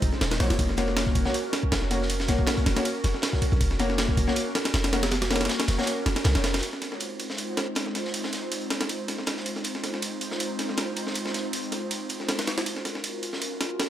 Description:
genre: drum and bass, jungle.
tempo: 159 BPM.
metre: 4/4.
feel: swing 54% on 16ths.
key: F phrygian.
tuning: A4 = 440 Hz.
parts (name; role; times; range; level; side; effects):
airy breathy pad; sustained chords; 0.0-13.9 s; Ab3 to C5; -32 LUFS; right 1 dB; chorus.
warm 808-style bass; bass; 0.0-6.6 s; Eb1 to C2; -27 LUFS; equal; none.
breakbeat sampler-style drum kit; drums; 0.0-13.9 s; kick drum, ride cymbal, snare drum; -28 LUFS; equal; high-pass filter on cymbals, high-pass filter on snare, high-pass filter on kick.
crunchy breakbeat drum kit; drums; 0.0-13.9 s; hi-hat, snare drum; -35 LUFS; equal; high-pass filter on hats, high-pass filter on snare, high-pass filter on room.
dark baby grand piano; stabs; 0.4-5.9 s; Bb3 to Db5; -30 LUFS; left 3 dB; vintage 12-bit sampler grit, dub echo.
room: light reverb, small room ambience.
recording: none.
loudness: -24 LUFS.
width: side -11 dB against mid.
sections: 0.0-6.6 A section; 6.6-13.9 B section.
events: none.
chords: 0.0 Fm7; 0.6 Gb/F; 6.6 Fm7; 12.7 Gb.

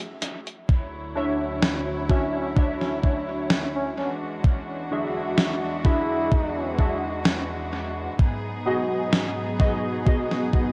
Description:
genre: vaporwave.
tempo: 64 BPM.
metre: 4/4.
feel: swing 53% on 16ths.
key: unclear.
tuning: A4 = 440 Hz.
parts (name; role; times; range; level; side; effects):
gated 80s digital drum machine; drums; 0.0-10.5 s; hi-hat, snare drum; -28 LUFS; equal; gated reverb, gated reverb snare, dub echo.
clear studio string section; sustained chords; 0.7-10.7 s; D2 to C#5; -33 LUFS; equal; none.
electronic kick drum; drums; 0.7-10.7 s; none; -22 LUFS; equal; none.
warbly lo-fi synth keys; accompaniment; 1.2-10.7 s; B3 to E5; -30 LUFS; equal; subtle chorus, dub echo.
mellow flugelhorn; melody; 2.1-6.8 s; C#4 to E4; -33 LUFS; equal; tape echo.
room: light reverb, digital ambience.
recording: echo-heavy mix, cassette tape.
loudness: -25 LUFS.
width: mono.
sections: 0.7-10.7 A section.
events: break 0.0-0.7.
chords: 0.0 N.C.; 0.7 Dmaj9; 4.0 E9; 8.2 G#m7.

